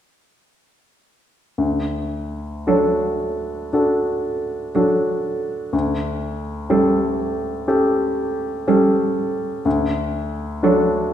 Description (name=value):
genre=classical, slow romantic movement for piano quartet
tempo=55-62 BPM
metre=4/4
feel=rubato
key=D major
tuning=A4 = 438 Hz
part: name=clear baby grand piano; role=accompaniment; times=1.6-11.1 s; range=D2 to A4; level=-19 LUFS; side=left 1 dB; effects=none
part: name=rich cello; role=second line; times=2.7-11.1 s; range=F#3 to G3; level=-22 LUFS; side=right 4 dB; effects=none
room=wet recital hall reverb, RT60 1.8 s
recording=recorded in a church or concert hall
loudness=-18 LUFS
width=side -10 dB against mid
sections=1.6-11.1 A section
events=none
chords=1.6 D; 5.7 A7/D; 9.7 D